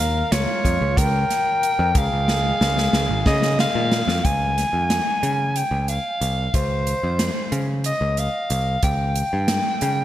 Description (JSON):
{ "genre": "progressive instrumental, band music in an uneven meter", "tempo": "183 BPM (eighths)", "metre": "7/8", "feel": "straight", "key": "Db lydian", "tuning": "A4 = 440 Hz", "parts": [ { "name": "growling soprano saxophone", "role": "melody", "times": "0.0-10.0 s", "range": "C5 to Ab5", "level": "-22 LUFS", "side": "left 1 dB", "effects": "digital delay" }, { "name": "warm flugelhorn", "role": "second line", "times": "0.0-3.9 s", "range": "F4 to Bb4", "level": "-30 LUFS", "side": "right 1 dB", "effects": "none" }, { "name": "overdriven picked electric bass", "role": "bass", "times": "0.0-10.0 s", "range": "Ab1 to Db3", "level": "-23 LUFS", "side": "equal", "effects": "none" }, { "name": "swinging big-band drum kit", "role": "drums", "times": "0.0-10.0 s", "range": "hi-hat, kick drum, snare drum", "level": "-24 LUFS", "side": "equal", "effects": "gated reverb" } ], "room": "moderate lush hall reverb, RT60 3.0 s", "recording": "bright 1980s-style digital production", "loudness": "-18 LUFS", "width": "side -13 dB against mid", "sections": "0.0-4.2 A section; 4.2-10.0 B section", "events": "drum fill 2.3-4.2", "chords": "0.0 Bbm/Db; 2.0 Db; 4.2 Dbmaj7; 8.8 Eb7/Db (rootless)" }